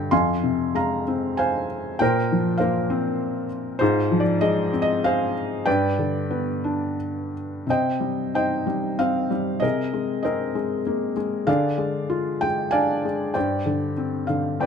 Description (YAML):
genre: classical, lyrical solo piano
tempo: 83-104 BPM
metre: 3/4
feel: rubato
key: C minor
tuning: A4 = 439 Hz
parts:
  - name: felt-muted upright piano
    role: solo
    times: 0.0-14.7 s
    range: F2 to C6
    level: -21 LUFS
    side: left 1 dB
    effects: none
room: light reverb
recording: none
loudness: -21 LUFS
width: side -6 dB against mid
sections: 0.0-7.7 A section; 7.7-14.7 B section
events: none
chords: 0.1 Fm; 2.0 Bbsus2; 3.8 Fm/Ab; 5.7 G; 7.7 Cm; 9.6 Abadd9/C; 11.5 Ddim; 13.4 Gsus4